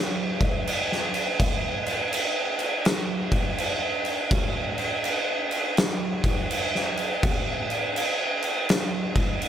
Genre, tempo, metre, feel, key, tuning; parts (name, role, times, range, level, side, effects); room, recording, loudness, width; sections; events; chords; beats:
metal; 82 BPM; 4/4; swing 64% on 8ths
oversized low-tuned drum kit; drums; 0.4-9.5 s; crash cymbal, kick drum, snare drum; -23 LUFS; equal
light reverb; -23 LUFS; side -10 dB against mid
0.0-9.5 A section
0.66 | 1.39 2.12 2.85 3.58 | 4.31 5.04 5.77 6.50 | 7.23 7.96 8.69 9.42